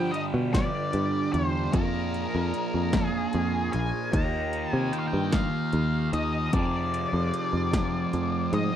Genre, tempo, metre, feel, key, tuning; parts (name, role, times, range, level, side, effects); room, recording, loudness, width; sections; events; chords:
psychedelic rock; 50 BPM (dotted quarters); 6/8; straight; A4 = 440 Hz
octave-fuzz lead guitar; melody; 0.0-8.8 s; Bb4 to Bb5; -32 LUFS; left 2 dB; distortion, tape echo
overdriven combo organ; sustained chords; 0.0-8.8 s; D3 to B5; -38 LUFS; right 5 dB; spring reverb
fuzz guitar; riff; 0.0-8.8 s; F2 to Eb4; -29 LUFS; right 1 dB; distortion, phaser
picked electric bass; bass; 0.0-8.7 s; Bb1 to F3; -28 LUFS; equal
80s electronic pad drums; drums; 0.1-8.7 s; hi-hat, kick drum, snare drum; -27 LUFS; equal
little or no reverb; dry, close 1970s-style studio recording; -24 LUFS; side -10 dB against mid
0.0-8.8 A section
0.0 G7; 1.7 Bb7sus4/F; 4.1 Ebadd9; 6.5 Fm7